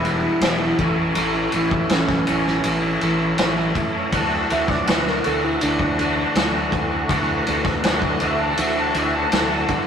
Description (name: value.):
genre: psychedelic rock.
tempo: 81 BPM.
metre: 4/4.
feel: straight.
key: unclear.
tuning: A4 = 441 Hz.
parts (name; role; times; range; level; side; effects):
overdriven synth lead; melody; 0.0-9.7 s; C#4 to A5; -25 LUFS; equal; distortion.
twangy electric guitar; riff; 0.0-9.9 s; E2 to F#4; -23 LUFS; left 1 dB; rotary speaker.
fuzz picked electric bass; bass; 0.0-9.9 s; E1 to D3; -25 LUFS; right 1 dB; overdrive.
tanpura; drone; 0.0-9.9 s; E2 to E3; -32 LUFS; left 1 dB; none.
vintage drum kit; drums; 0.0-9.9 s; kick drum, ride cymbal, snare drum; -22 LUFS; equal; none.
room: moderate stone room reverb, RT60 1.1 s.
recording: rough rehearsal-room recording, tube saturation.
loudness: -18 LUFS.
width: side -7 dB against mid.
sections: 0.0-9.9 A section.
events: analog synth lead solo 0.0-9.9.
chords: 0.0 Em; 0.8 A; 4.1 D.